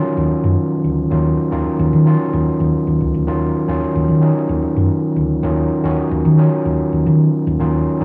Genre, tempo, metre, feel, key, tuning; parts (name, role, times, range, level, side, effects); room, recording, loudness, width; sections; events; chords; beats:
disco; 111 BPM; 4/4; straight; A4 = 440 Hz
overdriven tine electric piano; accompaniment; 0.0-8.0 s; Eb3 to Gb4; -19 LUFS; equal; cassette tape
hollow-body short-scale fingered electric bass; bass; 0.2-8.0 s; Db2 to Eb3; -18 LUFS; equal
digital ambience; home recording on cassette, studio ambience; -16 LUFS; mono
0.0-8.0 A section
0.0 Ebm9
0.03 0.57 | 1.11 1.65 2.19 2.73 | 3.28 3.82 4.36 4.90 | 5.44 5.98 6.52 7.06 | 7.60